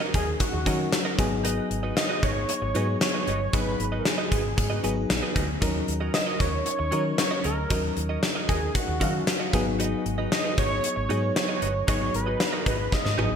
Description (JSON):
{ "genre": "1980s-style pop", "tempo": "115 BPM", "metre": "4/4", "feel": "straight", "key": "unclear", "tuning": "A4 = 439 Hz", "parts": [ { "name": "FM electric piano", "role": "accompaniment", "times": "0.0-13.4 s", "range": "F3 to F5", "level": "-30 LUFS", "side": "left 3 dB", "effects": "chorus" }, { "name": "direct-recorded clean electric guitar", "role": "riff", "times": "0.0-13.3 s", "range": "Db4 to Eb5", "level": "-34 LUFS", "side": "right 5 dB", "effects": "analog chorus, ping-pong delay" }, { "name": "wide unison lead", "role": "melody", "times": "0.1-13.4 s", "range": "Gb4 to Eb5", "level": "-30 LUFS", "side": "right 1 dB", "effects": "ping-pong delay" }, { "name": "vintage muted fingered electric bass", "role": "bass", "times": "0.1-13.4 s", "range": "G1 to Eb3", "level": "-30 LUFS", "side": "equal", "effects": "none" }, { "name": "gated 80s drum kit", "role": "drums", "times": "0.1-13.3 s", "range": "hi-hat, kick drum, snare drum, toms", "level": "-26 LUFS", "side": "equal", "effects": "gated reverb" } ], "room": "moderate plate reverb, RT60 2.6 s", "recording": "bright 1980s-style digital production", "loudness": "-23 LUFS", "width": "side -7 dB against mid", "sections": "0.0-13.4 A section", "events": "drum fill 12.9-13.4", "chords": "0.0 Ebm7; 1.2 Abm7; 5.6 Ebm7; 9.5 Abm7", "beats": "0.40 0.92 | 1.45 1.97 2.49 3.01 | 3.53 4.05 4.58 5.10 | 5.62 6.14 6.66 7.18 | 7.71 8.23 8.75 9.27 | 9.79 10.32 10.84 11.36 | 11.88 12.40 12.92" }